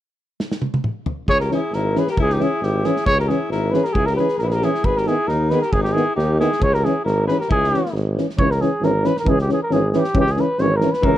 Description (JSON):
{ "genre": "balkan folk, Balkan brass band", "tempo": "135 BPM", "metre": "2/4", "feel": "swing 53% on 16ths", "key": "C# dorian sharp4", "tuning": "A4 = 438 Hz", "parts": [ { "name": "loose indie drum kit", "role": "percussion", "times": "0.4-11.2 s", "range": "kick drum, snare drum, toms", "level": "-25 LUFS", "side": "equal", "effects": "none" }, { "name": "mellow trumpet", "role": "melody", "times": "1.3-11.2 s", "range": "G4 to C#5", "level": "-21 LUFS", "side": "right 1 dB", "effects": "none" }, { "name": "clear alto saxophone", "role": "second line", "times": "1.3-7.9, 11.0-11.2 s", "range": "E3 to G#4", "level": "-26 LUFS", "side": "left 6 dB", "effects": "none" }, { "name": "warm tuba", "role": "bass", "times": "1.3-11.2 s", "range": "G#1 to D#2", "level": "-22 LUFS", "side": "equal", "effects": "none" }, { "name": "mellow French horn", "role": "accompaniment", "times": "1.5-11.1 s", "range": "B3 to C#4", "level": "-23 LUFS", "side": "left 6 dB", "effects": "none" }, { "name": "warm euphonium", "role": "accompaniment", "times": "1.5-11.1 s", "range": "D#3 to E3", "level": "-24 LUFS", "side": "right 6 dB", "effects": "none" } ], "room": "small room ambience", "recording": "none", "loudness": "-17 LUFS", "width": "side -12 dB against mid", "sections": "1.3-8.4 A section; 8.4-11.2 A section", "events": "drum fill 0.4-1.3", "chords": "0.4 N.C.; 1.3 C#m; 4.8 G#m; 6.6 C#m" }